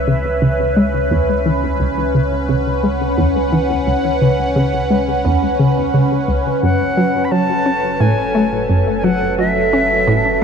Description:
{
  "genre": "ambient",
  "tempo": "87 BPM",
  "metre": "4/4",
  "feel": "straight",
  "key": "unclear",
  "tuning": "A4 = 440 Hz",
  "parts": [
    { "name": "phased analog pad", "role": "sustained chords", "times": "0.0-10.4 s", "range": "F#3 to F#5", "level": "-18 LUFS", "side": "equal", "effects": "phaser, chorus" },
    { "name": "warm sub bass", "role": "bass", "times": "0.0-10.4 s", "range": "F#1 to C#2", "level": "-25 LUFS", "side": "equal", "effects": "tube saturation" },
    { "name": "resonant blip pluck", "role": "riff", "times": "0.1-10.4 s", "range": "C#2 to C#4", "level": "-17 LUFS", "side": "equal", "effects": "chorus, ping-pong delay" },
    { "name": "reedy silver concert flute", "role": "melody", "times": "6.6-10.4 s", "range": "E5 to B5", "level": "-18 LUFS", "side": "equal", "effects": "ping-pong delay" }
  ],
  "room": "wet huge ambient reverb, RT60 7.6 s",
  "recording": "nothing above 10.9 kHz",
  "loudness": "-13 LUFS",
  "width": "side -6 dB against mid",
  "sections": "0.0-10.4 A section",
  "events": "filter sweep on synth arpeggio sound 0.0-10.4",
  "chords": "0.0 C#m7; 6.6 F#m"
}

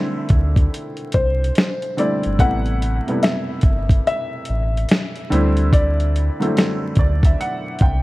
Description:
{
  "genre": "lo-fi hip hop",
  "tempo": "72 BPM",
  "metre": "4/4",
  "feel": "swing 64% on 16ths",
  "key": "unclear",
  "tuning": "A4 = 440 Hz",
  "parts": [
    { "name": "felt-muted upright piano", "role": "melody", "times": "0.0-8.0 s", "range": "C5 to F#5", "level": "-24 LUFS", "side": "left 2 dB", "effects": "tape echo" },
    { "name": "warm upright piano", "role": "accompaniment", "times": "0.0-8.0 s", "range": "C3 to G5", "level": "-23 LUFS", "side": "equal", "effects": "none" },
    { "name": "sub bass with octave", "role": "bass", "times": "0.3-8.0 s", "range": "G1 to D2", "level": "-19 LUFS", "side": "equal", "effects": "none" },
    { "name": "dusty soul sampler-style drum kit", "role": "drums", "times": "0.3-8.0 s", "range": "hi-hat, kick drum, snare drum", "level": "-17 LUFS", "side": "equal", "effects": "none" }
  ],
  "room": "small room reverb",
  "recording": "dark, warm production, vinyl crackle",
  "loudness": "-16 LUFS",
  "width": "side -19 dB against mid",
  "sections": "0.0-8.0 A section",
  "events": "upright piano fill 6.6-8.0",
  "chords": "0.0 D7sus4; 2.4 Am7; 5.3 D7sus4"
}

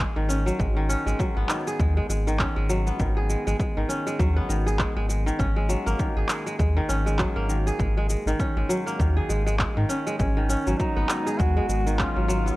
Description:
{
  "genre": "organic downtempo",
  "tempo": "100 BPM",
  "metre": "4/4",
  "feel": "swing 58% on 16ths",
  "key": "G# minor",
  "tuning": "A4 = 440 Hz",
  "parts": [
    { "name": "kora", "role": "arpeggios", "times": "0.0-12.6 s", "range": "D#3 to G#4", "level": "-27 LUFS", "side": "equal", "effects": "tape echo" },
    { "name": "warm sub bass", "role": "bass", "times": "0.0-12.5 s", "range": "G#1 to G#2", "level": "-24 LUFS", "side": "equal", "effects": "sidechain pumping" },
    { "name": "electronic kick drum", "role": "drums", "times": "0.0-12.1 s", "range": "none", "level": "-28 LUFS", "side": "equal", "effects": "overdrive" },
    { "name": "electronic shaker and handclaps", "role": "drums", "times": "0.0-12.6 s", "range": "none", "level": "-31 LUFS", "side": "equal", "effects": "overdrive" },
    { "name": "warm duduk", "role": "melody", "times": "10.2-12.6 s", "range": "C#4 to F#4", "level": "-29 LUFS", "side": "equal", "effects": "tape echo" },
    { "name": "bowed-like drone", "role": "sustained chords", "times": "10.9-12.6 s", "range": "F#3 to B4", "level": "-36 LUFS", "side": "equal", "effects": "built-in reverb, sidechain pumping" }
  ],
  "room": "little or no reverb",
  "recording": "dry, gritty hardware recording",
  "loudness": "-22 LUFS",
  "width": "side -18 dB against mid",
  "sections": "0.0-12.6 A section",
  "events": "none",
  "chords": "0.0 F#add9/G#; 0.6 G#m7"
}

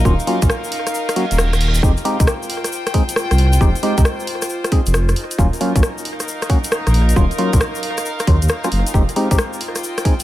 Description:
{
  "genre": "UK garage, two-step garage",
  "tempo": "135 BPM",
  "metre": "4/4",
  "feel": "swing 67% on 16ths",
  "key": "unclear",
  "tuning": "A4 = 440 Hz",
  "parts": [
    { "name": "dark detuned saw bass", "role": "bass", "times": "0.0-9.4 s", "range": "Eb1 to Eb2", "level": "-16 LUFS", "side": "equal", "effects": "none" },
    { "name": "rich chamber string section", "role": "texture", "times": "0.0-10.2 s", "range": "Eb4 to G5", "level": "-25 LUFS", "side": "left 1 dB", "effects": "sidechain pumping" },
    { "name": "percussive organ stab", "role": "stabs", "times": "0.1-10.1 s", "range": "Gb3 to Ab4", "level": "-22 LUFS", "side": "equal", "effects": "chorus, dub echo" },
    { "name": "electronic kick drum", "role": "drums", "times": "0.1-10.2 s", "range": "none", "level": "-16 LUFS", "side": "equal", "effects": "none" },
    { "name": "tube shaker", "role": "percussion", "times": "0.1-10.2 s", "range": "none", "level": "-30 LUFS", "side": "left 3 dB", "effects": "none" },
    { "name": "garage drum kit", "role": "drums", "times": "0.2-10.2 s", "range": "hi-hat, rim click", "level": "-23 LUFS", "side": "equal", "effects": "tape echo" },
    { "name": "reverse cymbal", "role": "sound effects", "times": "1.1-1.8 s", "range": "none", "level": "-27 LUFS", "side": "right 4 dB", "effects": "none" }
  ],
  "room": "light reverb",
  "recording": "echo-heavy mix",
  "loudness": "-15 LUFS",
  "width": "side -14 dB against mid",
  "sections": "0.0-10.2 A section",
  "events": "kick drops out 0.9-1.8; reverse cymbal 1.1-1.8",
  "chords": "0.0 Ebm9; 1.8 Fm9; 5.2 Ebm9; 8.9 Fm9"
}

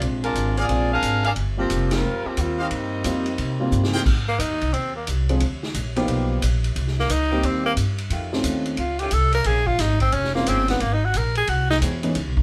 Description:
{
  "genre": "jazz, big band swing",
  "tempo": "178 BPM",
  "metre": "4/4",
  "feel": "swing 65% on 8ths",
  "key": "Eb major, Ab major from 4.1 s",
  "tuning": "A4 = 441 Hz",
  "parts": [
    { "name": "warm grand piano", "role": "accompaniment", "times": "0.0-12.1 s", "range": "Fb3 to Ab4", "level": "-28 LUFS", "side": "equal", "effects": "none" },
    { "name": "upright bass", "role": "bass", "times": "0.0-12.4 s", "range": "F1 to C3", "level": "-26 LUFS", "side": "equal", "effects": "none" },
    { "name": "swinging big-band drum kit", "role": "drums", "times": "0.0-12.4 s", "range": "crash cymbal, hi-hat, kick drum, ride cymbal, snare drum, toms", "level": "-31 LUFS", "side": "equal", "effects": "none" },
    { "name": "warm saxophone section", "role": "melody", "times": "0.2-4.0 s", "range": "F3 to F5", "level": "-27 LUFS", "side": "equal", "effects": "none" },
    { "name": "brilliant trumpet section", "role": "stabs", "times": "0.6-4.0 s", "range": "G4 to G5", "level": "-31 LUFS", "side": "equal", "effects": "none" },
    { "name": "bright tenor saxophone", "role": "melody", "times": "4.3-11.8 s", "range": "Bb3 to Bb4", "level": "-25 LUFS", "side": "equal", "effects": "none" },
    { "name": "clear saxophone section", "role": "sustained chords", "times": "6.0-12.2 s", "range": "Db3 to Ab4", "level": "-36 LUFS", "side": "equal", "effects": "none" }
  ],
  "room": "moderate small room ambience, RT60 0.5 s",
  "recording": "band playing live in one room",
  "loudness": "-22 LUFS",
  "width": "mono",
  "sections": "0.0-4.1 A section; 4.1-12.4 B section",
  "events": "band accent 1.9; drum fill 3.7-4.1; tenor saxophone solo 4.1-12.4",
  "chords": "0.0 Bb7; 1.4 Eb69; 4.1 Ab; 5.4 Bbadd11; 6.1 G7alt; 6.8 Cm7; 8.1 F7b13; 9.5 Bbm9; 10.8 Ab7b13"
}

